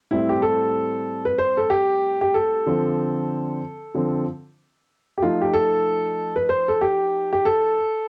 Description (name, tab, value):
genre	hip hop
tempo	94 BPM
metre	4/4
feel	swing 59% on 16ths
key	A minor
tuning	A4 = 439 Hz
part	warm upright piano	solo	0.1-8.1 s	A2 to C5	-22 LUFS	equal	none
room	moderate small room reverb, RT60 0.5 s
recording	home recording on cassette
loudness	-22 LUFS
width	mono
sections	0.1-8.1 A section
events	upright piano solo 0.1-8.1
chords	0.1 Am7; 2.7 Dm7; 5.2 F7